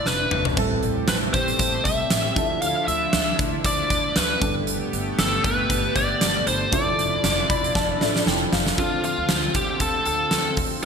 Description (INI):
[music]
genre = 1980s-style pop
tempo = 117 BPM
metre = 4/4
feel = swing 55% on 16ths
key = D dorian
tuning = A4 = 440 Hz
[part]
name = biting lead guitar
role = melody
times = 0.0-10.5 s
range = F4 to F5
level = -24 LUFS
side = left 1 dB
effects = overdrive, digital delay
[part]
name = warm baby grand piano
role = accompaniment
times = 0.0-10.8 s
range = F3 to B5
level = -29 LUFS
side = right 2 dB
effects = wide subtle chorus
[part]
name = chorused pulse-width pad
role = sustained chords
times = 0.0-10.8 s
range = D3 to G4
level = -30 LUFS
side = left 1 dB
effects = none
[part]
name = upright bass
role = bass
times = 0.1-10.8 s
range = F1 to D2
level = -31 LUFS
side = equal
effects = none
[part]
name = huge arena drum kit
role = drums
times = 0.1-10.8 s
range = hi-hat, kick drum, snare drum, splash cymbal, tambourine, toms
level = -24 LUFS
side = equal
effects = gated reverb
[sound]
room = moderate plate reverb, RT60 2.4 s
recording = bright 1980s-style digital production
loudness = -19 LUFS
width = side -6 dB against mid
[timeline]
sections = 0.0-8.8 A section; 8.8-10.8 B section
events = drum fill 0.1-0.6, 7.8-8.8; grand piano fill 7.2-8.8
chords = 0.0 Dmadd9/F; 0.6 Am7; 2.4 Dmadd9; 4.4 Gadd9; 6.7 Dmadd9/F; 8.8 Dm7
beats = 0.06 | 0.57 1.09 1.60 2.11 | 2.62 3.14 3.65 4.16 | 4.68 5.19 5.70 6.21 | 6.73 7.24 7.75 8.27 | 8.78 9.29 9.80 10.32 | 10.83